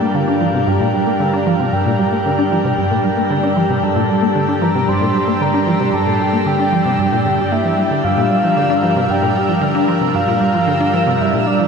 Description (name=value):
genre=ambient, sequencer-driven space music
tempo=114 BPM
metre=4/4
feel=straight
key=G dorian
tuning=A4 = 440 Hz
part: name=soft octave-layered synth lead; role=melody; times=0.0-11.7 s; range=D5 to C6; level=-19 LUFS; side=left 1 dB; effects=chorus, ping-pong delay
part: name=lush unison pad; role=sustained chords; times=0.0-11.7 s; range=G2 to Bb4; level=-18 LUFS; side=right 1 dB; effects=chorus
part: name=resonant blip pluck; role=riff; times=0.0-11.7 s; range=G2 to D4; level=-18 LUFS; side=equal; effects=chorus, ping-pong delay
part: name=bubbling stepped-filter texture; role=texture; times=0.0-11.7 s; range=E6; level=-29 LUFS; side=right 4 dB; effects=chorus, built-in reverb
room=wet shimmer reverb, RT60 7.0 s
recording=none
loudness=-13 LUFS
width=side -5 dB against mid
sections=0.0-11.7 A section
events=fade-in on synth texture 0.0-11.7; filter sweep on synth arpeggio sound 0.0-11.7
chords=0.0 Gm